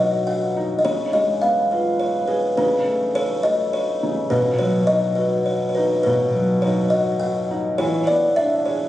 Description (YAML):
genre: children's music, lullaby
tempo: 104 BPM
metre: 3/4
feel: straight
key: unclear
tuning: A4 = 440 Hz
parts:
  - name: buzzing kalimba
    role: melody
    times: 0.0-8.9 s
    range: B4 to F#5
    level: -19 LUFS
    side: equal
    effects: none
  - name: felt-muted upright piano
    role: accompaniment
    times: 0.0-8.9 s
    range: B2 to A4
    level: -23 LUFS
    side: equal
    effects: none
room: moderate recital hall reverb, RT60 1.5 s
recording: recorded on a phone in the room, studio reverb, compression, nothing above 10.6 kHz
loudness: -18 LUFS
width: side -14 dB against mid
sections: 0.0-8.9 A section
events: none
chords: 0.0 B; 0.9 C#7; 2.6 B7sus2/C#; 4.3 B; 7.8 E7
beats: 0.28 | 0.86 1.43 2.00 | 2.58 3.15 3.73 | 4.31 4.89 5.47 | 6.05 6.64 7.22 | 7.80 8.38